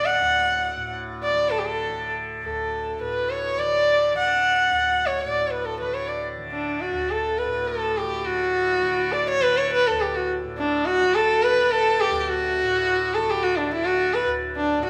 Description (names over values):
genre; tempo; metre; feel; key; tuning
indian classical, Hindustani; 104 BPM; 7/4; straight; D raga bilaval; A4 = 441 Hz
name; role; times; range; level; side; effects
rich sarangi; melody; 0.0-14.9 s; D4 to F#5; -23 LUFS; equal; none
tanpura; drone; 0.0-14.9 s; D2 to D3; -33 LUFS; equal; none
room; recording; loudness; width
wet large studio reverb, RT60 1.2 s; band playing live in one room; -23 LUFS; mono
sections
0.0-8.3 A section; 8.3-14.9 B section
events
speeding up 0.0-14.9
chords
none